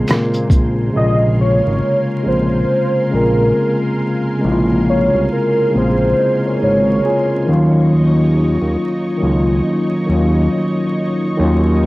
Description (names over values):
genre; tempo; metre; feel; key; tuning
lo-fi hip hop; 69 BPM; 4/4; swing 61% on 16ths; Bb minor; A4 = 440 Hz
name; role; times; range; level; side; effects
mellow tine electric piano; accompaniment; 0.0-11.9 s; C3 to Ab5; -16 LUFS; equal; medium stereo tremolo, low-pass filter
lush unison pad; sustained chords; 0.0-11.9 s; Eb4 to Db6; -29 LUFS; equal; chorus, low-pass filter
fat analog bass; bass; 0.0-11.9 s; Ab1 to Bb2; -16 LUFS; equal; transformer saturation
lo-fi sampler-style drum kit; drums; 0.1-0.8 s; hi-hat, kick drum, rim click, shaker; -14 LUFS; equal; cassette tape
maracas; percussion; 0.1-0.8 s; none; -43 LUFS; right 2 dB; none
warm velvety synth lead; melody; 1.0-7.3 s; Bb4 to Eb5; -18 LUFS; equal; chorus, low-pass filter, cassette tape, analog delay
room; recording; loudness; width
moderate booth ambience, RT60 0.2 s; home recording on cassette, vinyl crackle; -13 LUFS; side -19 dB against mid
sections
1.0-11.9 A section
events
none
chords
0.0 Bbm9; 7.5 Ebm9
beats
0.09 | 0.96 1.83 2.69 3.56 | 4.43 5.30 6.17 7.04 | 7.91 8.78 9.65 10.52 | 11.39